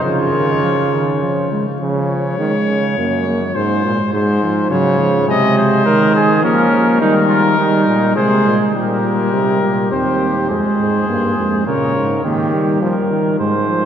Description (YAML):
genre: classical, imitative canzona for brass ensemble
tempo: 103 BPM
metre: 3/4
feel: straight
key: Db major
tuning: A4 = 441 Hz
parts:
  - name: warm trumpet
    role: melody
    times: 0.0-12.2 s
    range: Bb4 to Eb5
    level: -20 LUFS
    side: left 4 dB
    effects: none
  - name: clear flugelhorn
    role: second line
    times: 0.0-1.5, 5.3-13.9 s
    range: Db4 to C5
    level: -20 LUFS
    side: right 2 dB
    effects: none
  - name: mellow euphonium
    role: accompaniment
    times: 0.0-13.9 s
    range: Db3 to C4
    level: -18 LUFS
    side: right 1 dB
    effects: none
  - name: bright bass trombone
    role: bass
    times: 0.0-13.9 s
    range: Eb2 to F3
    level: -18 LUFS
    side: right 1 dB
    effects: none
room: wet cathedral reverb, RT60 6.1 s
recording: heard from further back in the room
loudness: -13 LUFS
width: side -9 dB against mid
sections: 0.0-1.8 A section; 1.8-8.7 B section; 8.7-13.9 A section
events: none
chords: 0.0 Db; 3.0 Gb; 3.6 Ab; 4.7 Db; 5.3 Ab/C; 6.4 Bbm/F; 7.0 Eb; 8.2 Ab/C; 8.7 Gmadd11/Bb; 9.9 Cm/Eb; 10.5 Fm; 11.7 Bbm; 12.2 Eb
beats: | 0.04 0.63 1.22 | 1.81 2.39 2.98 | 3.56 4.14 4.71 | 5.29 5.86 6.44 | 7.01 7.59 8.16 | 8.75 9.33 9.92 | 10.50 11.08 11.67 | 12.25 12.82 13.40